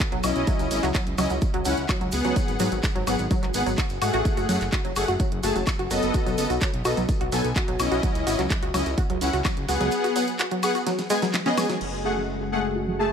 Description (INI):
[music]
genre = progressive house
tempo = 127 BPM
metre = 4/4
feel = straight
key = F# dorian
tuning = A4 = 438 Hz
[part]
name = electronic kick drum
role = drums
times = 0.0-9.5 s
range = none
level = -25 LUFS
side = equal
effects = none
[part]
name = pop drum kit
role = drums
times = 0.0-11.9 s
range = crash cymbal, handclaps, hi-hat, snare drum, woodblock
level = -30 LUFS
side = left 1 dB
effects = none
[part]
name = maracas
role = percussion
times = 0.0-11.8 s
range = none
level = -37 LUFS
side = right 3 dB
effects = none
[part]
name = wide unison pluck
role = arpeggios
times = 0.1-13.0 s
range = F#3 to F#4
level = -28 LUFS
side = right 1 dB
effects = sidechain pumping, dub echo
[part]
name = fat analog bass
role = bass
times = 0.1-13.1 s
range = F#1 to G#2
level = -30 LUFS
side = equal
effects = sidechain pumping
[part]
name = soft supersaw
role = stabs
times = 0.2-13.1 s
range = A3 to A5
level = -26 LUFS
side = left 2 dB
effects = wide subtle chorus, sidechain pumping, dub echo
[part]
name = lush unison pad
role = sustained chords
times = 11.8-13.1 s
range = C#3 to F#4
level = -30 LUFS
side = left 1 dB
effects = chorus, sidechain pumping
[sound]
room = light reverb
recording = none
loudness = -22 LUFS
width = side -7 dB against mid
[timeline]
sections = 0.0-11.8 A section; 11.8-13.1 B section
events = kick drops out 9.9-11.8; drum fill 10.9-11.8; filter sweep on synth pluck 11.8-13.1; filter sweep on analog synth pad 11.8-13.1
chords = 0.5 C#madd9; 2.4 G#m7; 4.3 F#madd9; 6.1 B7; 8.0 C#madd9; 9.9 G#m7; 11.8 F#madd9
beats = 0.00 | 0.47 0.95 1.42 1.89 | 2.36 2.83 3.31 3.78 | 4.25 4.72 5.20 5.67 | 6.14 6.62 7.09 7.56 | 8.03 8.51 8.98 9.45 | 9.92 10.39 10.87 11.34 | 11.81 12.28 12.76